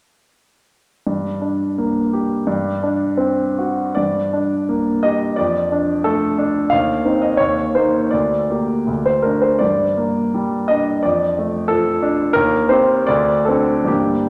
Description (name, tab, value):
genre	classical, romantic character piece for solo piano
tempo	71-94 BPM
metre	2/4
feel	rubato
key	G minor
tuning	A4 = 438 Hz
part	warm grand piano	solo	1.1-14.3 s	D2 to F5	-18 LUFS	equal	none
room	wet recital hall reverb, RT60 1.4 s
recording	none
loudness	-18 LUFS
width	mono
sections	1.1-4.0 A section; 4.0-14.3 B section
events	none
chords	1.1 Gm; 2.5 D7/G; 4.0 Gm; 5.4 Dm/F; 6.7 Cm/Eb; 7.4 Eb5; 8.1 Gm/D; 8.9 D5; 9.6 Gm; 11.0 Dm/F; 12.3 Cm/Eb; 13.1 D5